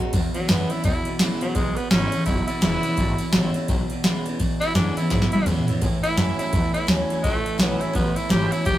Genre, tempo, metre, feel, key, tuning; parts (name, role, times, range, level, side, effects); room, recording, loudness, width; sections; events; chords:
rockabilly; 169 BPM; 4/4; swing 60% on 8ths; E major; A4 = 439 Hz
picked steel-string acoustic guitar; accompaniment; 0.0-8.8 s; E2 to F#4; -27 LUFS; left 1 dB
electric guitar through a small old amp; riff; 0.0-8.8 s; E2 to G#3; -29 LUFS; right 2 dB; spring reverb
upright bass; bass; 0.1-8.8 s; E1 to A2; -27 LUFS; equal
booming analog drum machine; drums; 0.1-8.8 s; kick drum, ride cymbal, snare drum, toms; -23 LUFS; equal
raspy tenor saxophone; melody; 0.3-8.8 s; F#3 to G4; -26 LUFS; right 1 dB; digital delay
light reverb; rough rehearsal-room recording, tube saturation; -20 LUFS; side -13 dB against mid
0.1-8.8 A section
drum fill 5.1-5.8
0.1 E; 5.8 A